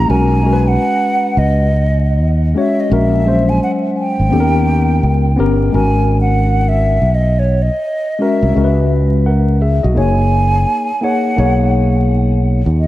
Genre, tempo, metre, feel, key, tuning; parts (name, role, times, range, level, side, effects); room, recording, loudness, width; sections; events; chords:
hip hop; 85 BPM; 4/4; swing 62% on 16ths; G# minor; A4 = 442 Hz
breathy mellow silver concert flute; melody; 0.0-12.9 s; C#5 to A#5; -19 LUFS; right 1 dB; tape echo
tine electric piano; accompaniment; 0.0-12.6 s; F#3 to F#5; -16 LUFS; left 2 dB; medium stereo tremolo
fretless electric bass; bass; 0.0-12.9 s; F#1 to D#2; -13 LUFS; equal
moderate lush hall reverb, RT60 1.6 s; dreamy mix soaked in reverb, vinyl crackle; -11 LUFS; side -15 dB against mid
0.0-5.7 A section; 5.7-12.9 B section
flute solo 5.7-12.9
0.1 Bmaj7; 2.9 F#9; 4.3 D#7b13; 5.7 G#m11; 8.6 C#5; 10.0 F#add9; 11.4 B69